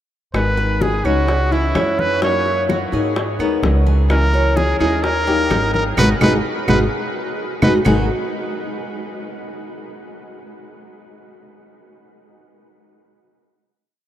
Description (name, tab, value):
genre	latin, Cuban son and guajira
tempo	128 BPM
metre	4/4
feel	straight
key	G# minor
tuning	A4 = 440 Hz
part	bright trumpet	melody	0.3-7.7 s	E4 to C#5	-22 LUFS	equal	none
part	flamenco guitar	accompaniment	0.3-8.1 s	G#2 to A#4	-23 LUFS	left 3 dB	none
part	upright bass	bass	0.3-8.1 s	G#1 to G#2	-20 LUFS	equal	none
part	bongos	percussion	0.3-8.0 s	none	-27 LUFS	left 4 dB	none
part	claves	percussion	0.3-8.0 s	none	-33 LUFS	right 6 dB	none
part	congas	percussion	0.3-8.0 s	none	-24 LUFS	right 1 dB	none
part	Cuban tres	arpeggios	0.6-8.1 s	G#3 to C#5	-23 LUFS	right 2 dB	none
room	wet huge ambient reverb, RT60 9.3 s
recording	in a vast, echoing space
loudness	-15 LUFS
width	side -11 dB against mid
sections	0.3-7.9 A section; 7.9-9.7 final chord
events	band accent 6.0-7.9; drum fill 7.2-7.9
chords	0.3 G#m; 1.3 C#m; 2.2 F#6; 3.2 G#madd9; 4.1 C#m; 5.0 D#; 6.0 G#m7; 7.9 G#7(no3)